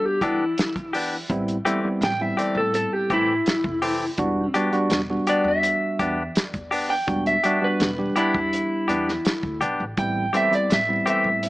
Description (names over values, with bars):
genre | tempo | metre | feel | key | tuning
straight-eighth soul blues | 83 BPM | 4/4 | straight | E minor | A4 = 440 Hz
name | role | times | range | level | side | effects
electric guitar through a small old amp | melody | 0.0-11.5 s | E4 to G5 | -23 LUFS | equal | phaser
tine electric piano | accompaniment | 0.0-11.5 s | G3 to G4 | -25 LUFS | right 1 dB | none
direct-recorded clean electric guitar | stabs | 0.2-11.3 s | E3 to G4 | -25 LUFS | left 2 dB | none
upright bass | bass | 0.2-11.5 s | E1 to E3 | -34 LUFS | equal | none
warm soul drum kit | drums | 0.2-11.5 s | hi-hat, kick drum, snare drum | -27 LUFS | equal | none
room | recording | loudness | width
light reverb | small speaker sound | -20 LUFS | side -19 dB against mid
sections
0.0-11.5 A section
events
none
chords
0.0 Em7; 1.3 Am7; 4.2 Em7; 10.0 Am7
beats
0.57 | 1.29 2.02 2.74 3.46 | 4.19 4.91 5.64 6.36 | 7.08 7.81 8.53 9.26 | 9.98 10.71 11.43